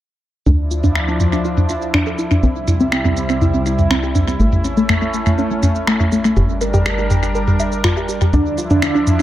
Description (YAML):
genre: melodic techno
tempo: 122 BPM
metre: 4/4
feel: straight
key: D minor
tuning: A4 = 444 Hz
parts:
  - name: lush unison pad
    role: sustained chords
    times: 0.7-9.2 s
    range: C3 to Bb4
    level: -21 LUFS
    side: equal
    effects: chorus
  - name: warbly dusty pluck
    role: arpeggios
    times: 0.5-9.2 s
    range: A3 to E5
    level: -20 LUFS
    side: equal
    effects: chorus, tape echo
  - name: tight sequencer bass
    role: bass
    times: 0.5-9.2 s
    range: G1 to D2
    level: -21 LUFS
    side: equal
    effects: none
  - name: house drum kit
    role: drums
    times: 0.5-9.2 s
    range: finger snaps, shaker, toms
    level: -17 LUFS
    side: equal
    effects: low-pass filter on toms, low-pass filter on perc, low-pass filter on snare, tape echo
  - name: fat analog lead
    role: melody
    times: 8.3-8.9 s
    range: D4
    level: -21 LUFS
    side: right 2 dB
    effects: wide subtle chorus, dub echo
room: moderate spring reverb, RT60 1.4 s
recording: echo-heavy mix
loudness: -14 LUFS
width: side -13 dB against mid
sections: 0.5-9.2 A section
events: filter sweep on synth arpeggio sound 0.5-9.2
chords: 0.5 Dmadd9; 2.4 C; 4.4 A; 6.4 Gm; 8.3 Dmadd9